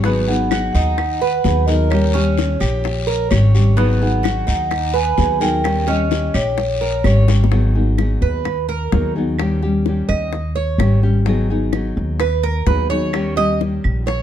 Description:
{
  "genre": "latin, Cuban son and guajira",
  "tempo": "128 BPM",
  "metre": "4/4",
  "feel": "straight",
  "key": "G# minor",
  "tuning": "A4 = 440 Hz",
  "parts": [
    { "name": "vibraphone with soft mallets", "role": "melody", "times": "0.0-7.2 s", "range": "B4 to G#5", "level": "-22 LUFS", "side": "equal", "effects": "plate reverb" },
    { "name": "nylon-string guitar", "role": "accompaniment", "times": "0.0-14.1 s", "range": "D#3 to G#4", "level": "-21 LUFS", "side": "left 3 dB", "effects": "none" },
    { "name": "Cuban tres", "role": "arpeggios", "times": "0.0-14.2 s", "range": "B3 to D#5", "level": "-22 LUFS", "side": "right 7 dB", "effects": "none" },
    { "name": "upright bass", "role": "bass", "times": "0.0-14.2 s", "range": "G#1 to D#2", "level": "-18 LUFS", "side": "equal", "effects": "none" },
    { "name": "bongos", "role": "percussion", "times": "0.0-14.2 s", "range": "none", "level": "-25 LUFS", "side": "left 10 dB", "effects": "none" },
    { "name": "guiro", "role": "percussion", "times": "0.0-7.5 s", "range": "none", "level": "-32 LUFS", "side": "left 5 dB", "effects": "none" },
    { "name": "claves", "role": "percussion", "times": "0.5-14.1 s", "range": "none", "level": "-33 LUFS", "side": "right 7 dB", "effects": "none" }
  ],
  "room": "light reverb",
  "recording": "dark, warm production",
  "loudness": "-15 LUFS",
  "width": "side -10 dB against mid",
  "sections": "0.0-7.5 A section; 7.5-14.2 B section",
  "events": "drum fill 7.3; Cuban tres solo 7.5-14.2",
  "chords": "0.0 G#m7; 1.9 D#7; 3.8 G#m7; 5.6 D#7; 7.5 G#m7; 9.4 D#7; 11.3 G#m7; 13.1 D#7"
}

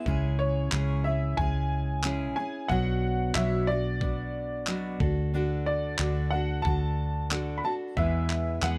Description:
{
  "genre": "acoustic pop",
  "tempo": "91 BPM",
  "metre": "4/4",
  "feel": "swing 55% on 16ths",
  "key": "unclear",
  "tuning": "A4 = 440 Hz",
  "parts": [
    { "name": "fingerpicked steel-string acoustic guitar", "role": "accompaniment", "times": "0.0-8.8 s", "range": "E2 to C#5", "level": "-35 LUFS", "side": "equal", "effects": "none" },
    { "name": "vintage muted fingered electric bass", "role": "bass", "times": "0.0-8.8 s", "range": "B1 to E2", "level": "-31 LUFS", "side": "equal", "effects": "none" },
    { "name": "dusty soul sampler-style drum kit", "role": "drums", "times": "0.1-8.8 s", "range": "handclaps, kick drum", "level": "-34 LUFS", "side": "equal", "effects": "none" },
    { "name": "clear upright piano", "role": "melody", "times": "0.4-8.8 s", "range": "C#5 to B5", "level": "-34 LUFS", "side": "equal", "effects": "none" }
  ],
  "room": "little or no reverb",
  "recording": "close, detailed microphones",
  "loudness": "-28 LUFS",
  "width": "mono",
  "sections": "0.0-8.8 A section",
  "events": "none",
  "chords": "0.1 C#m; 2.7 Bmadd9; 5.0 D; 8.0 E"
}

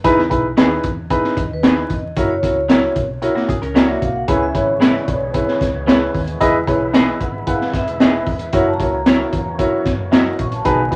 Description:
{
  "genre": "uptempo 1960s-style soul",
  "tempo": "113 BPM",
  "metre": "4/4",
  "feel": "straight",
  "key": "unclear",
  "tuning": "A4 = 441 Hz",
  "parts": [
    { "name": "dark upright piano", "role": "accompaniment", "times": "0.0-11.0 s", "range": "B2 to F#5", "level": "-21 LUFS", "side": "equal", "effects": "none" },
    { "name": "hollow-body short-scale fingered electric bass", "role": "bass", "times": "0.0-11.0 s", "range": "E1 to F#2", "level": "-30 LUFS", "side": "equal", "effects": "none" },
    { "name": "crunchy breakbeat drum kit", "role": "drums", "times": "0.0-11.0 s", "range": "hi-hat, kick drum, snare drum", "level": "-20 LUFS", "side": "equal", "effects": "none" },
    { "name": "electric guitar through a small old amp", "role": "stabs", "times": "0.6-10.2 s", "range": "F#3 to B4", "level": "-26 LUFS", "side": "equal", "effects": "vibrato effect" },
    { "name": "vibraphone with soft mallets", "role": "melody", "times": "1.4-11.0 s", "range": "B4 to C#6", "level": "-26 LUFS", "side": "equal", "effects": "none" },
    { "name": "vintage hollow-body jazz guitar", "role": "riff", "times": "3.4-4.3 s", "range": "A#3 to A#4", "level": "-27 LUFS", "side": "equal", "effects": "none" },
    { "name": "overdriven tonewheel organ", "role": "sustained chords", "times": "4.3-11.0 s", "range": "D#3 to E4", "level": "-31 LUFS", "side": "equal", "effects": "fast rotary speaker" }
  ],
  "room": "moderate small room ambience, RT60 0.5 s",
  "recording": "vinyl crackle",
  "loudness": "-17 LUFS",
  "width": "mono",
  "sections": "0.0-11.0 A section",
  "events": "vibraphone solo 0.0-11.0",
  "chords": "0.0 Emaj7; 2.2 F#7; 4.3 C#m7; 6.4 Emaj7; 8.5 F#7"
}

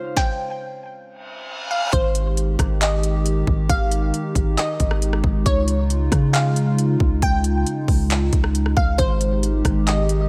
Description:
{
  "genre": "hip hop, atmospheric cloud-rap",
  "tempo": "136 BPM",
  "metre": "4/4",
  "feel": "half-time",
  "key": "Ab major",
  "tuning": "A4 = 439 Hz",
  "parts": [
    { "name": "hollow soft pad", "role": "sustained chords", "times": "0.0-10.3 s", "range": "Db3 to G4", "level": "-27 LUFS", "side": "equal", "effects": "chorus, sidechain pumping, low-pass filter" },
    { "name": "Celtic harp", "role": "arpeggios", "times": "0.0-1.9 s", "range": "Db4 to F5", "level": "-38 LUFS", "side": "equal", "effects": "low-pass filter, tape echo" },
    { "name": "glassy wavetable pluck", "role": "melody", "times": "0.2-10.3 s", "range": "C5 to G5", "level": "-28 LUFS", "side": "equal", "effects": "chorus, low-pass filter, tape echo" },
    { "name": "trap drum kit", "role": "drums", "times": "0.2-10.2 s", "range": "handclaps, hi-hat, kick drum, rim click, snare drum", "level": "-24 LUFS", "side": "equal", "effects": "none" },
    { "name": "reverse cymbal", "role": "sound effects", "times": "1.2-1.9 s", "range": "none", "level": "-31 LUFS", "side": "equal", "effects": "none" },
    { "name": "long sustained 808-style bass", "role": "bass", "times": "1.9-10.3 s", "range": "Ab1 to Db3", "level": "-23 LUFS", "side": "equal", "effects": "none" }
  ],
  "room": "little or no reverb",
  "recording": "none",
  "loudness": "-20 LUFS",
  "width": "mono",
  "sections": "0.0-1.9 A section; 1.9-10.3 B section",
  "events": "reverse cymbal 1.2-1.9",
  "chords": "0.0 Dbmaj7; 1.9 Abmaj7(no3); 5.5 Db; 9.0 Abmaj7"
}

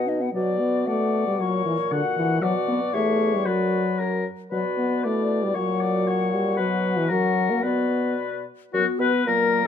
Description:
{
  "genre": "quick classical-period movement for wind quintet",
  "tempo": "115 BPM",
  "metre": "2/4",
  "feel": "rubato",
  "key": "B minor",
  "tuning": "A4 = 440 Hz",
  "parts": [
    { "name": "hollow concert flute", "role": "melody", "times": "0.0-9.7 s", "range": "F#4 to F#5", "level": "-29 LUFS", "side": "left 14 dB", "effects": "none" },
    { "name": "warm oboe", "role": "second line", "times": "0.0-9.7 s", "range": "F#4 to F#5", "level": "-27 LUFS", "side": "left 6 dB", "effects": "none" },
    { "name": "clear French horn", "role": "accompaniment", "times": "0.0-9.6 s", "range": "D3 to D#4", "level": "-24 LUFS", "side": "left 1 dB", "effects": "none" },
    { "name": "warm clarinet", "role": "accompaniment", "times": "0.0-9.7 s", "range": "F#3 to A#4", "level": "-34 LUFS", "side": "right 10 dB", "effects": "none" },
    { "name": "mellow bassoon", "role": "bass", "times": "0.0-9.7 s", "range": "E2 to B2", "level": "-28 LUFS", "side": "right 2 dB", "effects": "none" }
  ],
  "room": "moderate recital hall reverb, RT60 1.4 s",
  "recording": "close, detailed microphones",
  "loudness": "-21 LUFS",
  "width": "side -8 dB against mid",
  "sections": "0.4-8.7 A section",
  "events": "none",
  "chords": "0.4 Bm; 1.4 F#/A#; 2.4 Bm; 2.9 C#dim/E; 3.5 Bm/F#; 4.5 Bm; 5.6 F#/A#; 6.6 B5; 7.1 F#; 7.6 Bm; 8.7 B5/F#"
}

